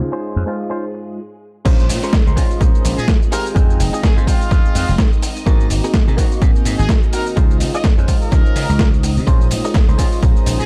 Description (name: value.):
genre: filtered disco house.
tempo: 126 BPM.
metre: 4/4.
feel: swing 57% on 16ths.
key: Bb minor.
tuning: A4 = 441 Hz.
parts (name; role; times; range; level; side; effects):
overdriven reed electric piano; accompaniment; 0.0-10.7 s; Ab3 to G5; -27 LUFS; equal; phaser, sidechain pumping, low-pass filter.
string machine, full ensemble; sustained chords; 0.0-10.7 s; Ab3 to Eb5; -35 LUFS; equal; phaser, ensemble chorus, sidechain pumping, low-pass filter.
slap bass; bass; 0.0-10.7 s; F1 to Db3; -22 LUFS; equal; sidechain pumping, low-pass filter.
direct-recorded clean electric guitar; riff; 0.1-10.6 s; C4 to Eb5; -30 LUFS; equal; lush chorus, sidechain pumping, low-pass filter.
dusty soul sampler-style drum kit; drums; 1.7-10.7 s; crash cymbal, hi-hat, shaker, snare drum; -26 LUFS; equal; overdrive, sidechain pumping on cymbals, studio reverb, sidechain pumping on perc, sidechain pumping on hats.
electronic kick drum; drums; 1.7-10.3 s; none; -16 LUFS; equal; studio reverb.
bright trumpet section; melody; 3.0-10.7 s; F4 to Eb5; -29 LUFS; equal; sidechain pumping, low-pass filter.
tambourine; percussion; 9.3-10.7 s; none; -40 LUFS; equal; none.
room: little or no reverb.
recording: dark, warm production.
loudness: -15 LUFS.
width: mono.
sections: 0.0-1.7 A section; 1.7-10.7 B section.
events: filter sweep 0.0-1.7; stop 1.2-1.7; drop 1.7-10.7.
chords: 0.0 Dbmaj7; 1.7 Bbm9; 3.3 Fm7; 5.5 Ab9; 7.4 Dbmaj7; 9.3 Bbm9.